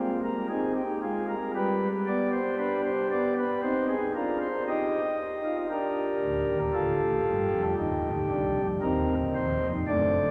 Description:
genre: classical, baroque-style 4-part fugue for pipe organ.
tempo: 58 BPM.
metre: 4/4.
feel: straight.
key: C minor.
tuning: A4 = 440 Hz.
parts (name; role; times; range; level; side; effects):
pipe organ, flutes; solo; 0.0-10.3 s; C1 to Eb5; -28 LUFS; equal; none.
room: wet cathedral reverb, RT60 4.3 s.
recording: none.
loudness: -28 LUFS.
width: mono.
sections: 0.0-10.3 A section.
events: none.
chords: 0.0 Fm; 1.6 G; 3.6 Cm; 5.7 Gm/D; 7.8 Cm.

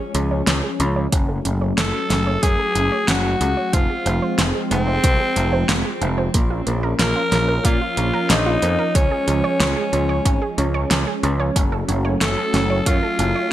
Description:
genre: synthwave.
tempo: 92 BPM.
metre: 4/4.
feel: straight.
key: unclear.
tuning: A4 = 440 Hz.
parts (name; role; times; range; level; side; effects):
raspy alto saxophone; melody; 0.0-13.5 s; C4 to Bb4; -23 LUFS; left 1 dB; tape echo.
warm analog pad; sustained chords; 0.0-13.5 s; F3 to Db4; -26 LUFS; right 1 dB; chorus, sidechain pumping.
wide unison pluck; arpeggios; 0.0-13.5 s; Bb3 to Db5; -27 LUFS; right 4 dB; tape echo.
overdriven picked electric bass; bass; 0.1-13.3 s; F1 to Bb2; -22 LUFS; equal; sidechain pumping.
pop drum kit; drums; 0.1-13.3 s; hi-hat, snare drum; -22 LUFS; equal; gated reverb.
electronic kick drum; drums; 1.1-13.0 s; none; -19 LUFS; equal; none.
room: light reverb.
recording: none.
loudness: -17 LUFS.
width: side -12 dB against mid.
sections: 0.0-13.5 A section.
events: filter sweep on synth arpeggio sound 0.0-13.5.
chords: 0.0 Db; 1.1 Gbm; 3.7 Fm; 6.3 Bbm; 9.0 Db; 11.6 Gbm.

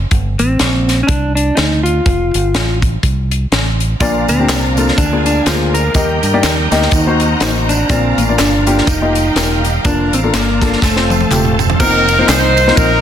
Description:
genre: uptempo gospel.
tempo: 123 BPM.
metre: 4/4.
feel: swing 58% on 8ths.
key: Bb major.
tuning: A4 = 440 Hz.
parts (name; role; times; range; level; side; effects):
fingered electric bass; bass; 0.0-13.0 s; E1 to G2; -17 LUFS; equal; none.
crisp fusion drum kit; drums; 0.1-12.9 s; crash cymbal, hi-hat, kick drum, ride cymbal, snare drum, toms; -17 LUFS; equal; none.
clean lap steel guitar; melody; 0.4-11.6 s; A3 to Bb4; -17 LUFS; equal; none.
warm grand piano; accompaniment; 4.0-12.9 s; Bb2 to Eb5; -17 LUFS; left 3 dB; none.
bright tonewheel organ; sustained chords; 4.0-13.0 s; D3 to A4; -22 LUFS; right 3 dB; slow rotary speaker, chorus vibrato.
warm studio string section; sustained chords; 4.0-11.8 s; A4 to Bb5; -24 LUFS; left 2 dB; none.
tambourine and handclaps; percussion; 4.0-12.9 s; none; -24 LUFS; right 2 dB; none.
clear horn section; melody; 11.8-13.0 s; Eb4 to C5; -12 LUFS; equal; none.
room: light reverb.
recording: dense, heavily limited modern master.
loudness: -11 LUFS.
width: side -9 dB against mid.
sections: 0.0-11.8 A section; 11.8-13.0 B section.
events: drum fill 10.8-11.8.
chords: 0.1 Gm; 2.1 F; 4.0 Bb; 5.0 Bb7/D; 6.0 Eb; 6.9 Ebm6; 7.9 Bb; 8.9 F9sus4; 9.9 Bb/F; 10.8 F; 11.8 F7sus4.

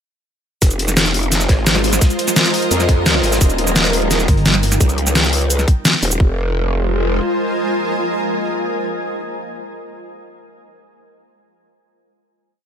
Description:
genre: dark technical drum and bass.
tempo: 172 BPM.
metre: 4/4.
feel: straight.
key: F minor.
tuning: A4 = 440 Hz.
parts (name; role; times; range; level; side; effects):
swarming drone; sustained chords; 1.1-9.3 s; G3 to C5; -23 LUFS; equal; built-in reverb, sidechain pumping.
growl bass; bass; 0.6-7.2 s; Eb1 to F2; -18 LUFS; equal; chorus, tube saturation.
crunchy breakbeat drum kit; drums; 0.6-4.7 s; hi-hat, snare drum; -28 LUFS; equal; none.
dubstep drum kit; drums; 0.6-6.2 s; hi-hat, shaker, snare drum; -16 LUFS; equal; overdrive, small room ambience.
electronic kick drum; drums; 0.6-6.3 s; none; -13 LUFS; equal; small room ambience.
granular cloud pad; texture; 1.6-9.5 s; F4 to Ab5; -24 LUFS; right 1 dB; built-in reverb, sidechain pumping.
pulsing pluck wobble bass; bass; 4.3-4.8 s; G1; -16 LUFS; equal; chorus.
room: light reverb.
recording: none.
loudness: -14 LUFS.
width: side -8 dB against mid.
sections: 0.6-6.2 drop; 6.2-9.0 final chord.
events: drop 0.6-6.2.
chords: 0.6 Fm; 3.4 Eb; 6.2 Fm.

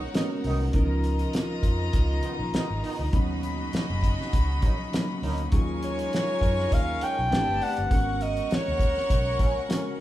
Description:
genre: lush 1970s-style soul.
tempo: 101 BPM.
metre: 4/4.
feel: swing 54% on 16ths.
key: unclear.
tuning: A4 = 440 Hz.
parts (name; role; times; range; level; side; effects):
warm studio string section; second line; 0.0-10.0 s; Eb4 to Db6; -34 LUFS; left 1 dB; none.
reed electric piano; accompaniment; 0.0-10.0 s; Fb3 to B4; -33 LUFS; equal; phaser.
clear studio string section; sustained chords; 0.0-10.0 s; Cb3 to Bb4; -39 LUFS; left 1 dB; none.
cloth-damped thuddy drum kit; drums; 0.1-9.8 s; hi-hat, kick drum, snare drum; -26 LUFS; equal; none.
warm trombone section; stabs; 0.2-9.8 s; Eb3 to Eb4; -36 LUFS; right 3 dB; none.
vintage muted fingered electric bass; bass; 0.4-9.5 s; F#1 to Gb2; -29 LUFS; equal; none.
breathy alto saxophone; melody; 5.8-10.0 s; Db5 to G5; -28 LUFS; equal; none.
room: moderate large studio reverb, RT60 0.8 s.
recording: band playing live in one room.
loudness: -23 LUFS.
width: side -14 dB against mid.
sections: 0.0-10.0 A section.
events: none.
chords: 0.0 Abm11; 0.7 Db13; 3.1 Bmaj9; 5.5 Ebm11; 7.3 Am11; 7.9 Abm11.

